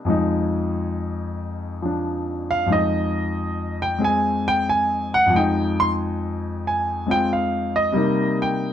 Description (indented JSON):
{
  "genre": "solo jazz",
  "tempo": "91 BPM",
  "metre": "4/4",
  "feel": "swing 69% on 8ths",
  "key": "unclear",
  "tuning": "A4 = 440 Hz",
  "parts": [
    { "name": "clear grand piano", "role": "solo", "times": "0.0-8.7 s", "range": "F2 to C6", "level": "-20 LUFS", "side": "left 1 dB", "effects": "none" }
  ],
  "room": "light reverb",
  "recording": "dark, warm production",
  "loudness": "-20 LUFS",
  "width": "side -10 dB against mid",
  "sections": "0.0-8.7 A section",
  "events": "grand piano solo 0.0-8.7",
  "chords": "0.1 Fm7; 7.9 Cm7",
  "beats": "| 0.07 0.72 1.38 2.04 | 2.69 3.35 4.00 4.66 | 5.32 5.97 6.63 7.29 | 7.95 8.60"
}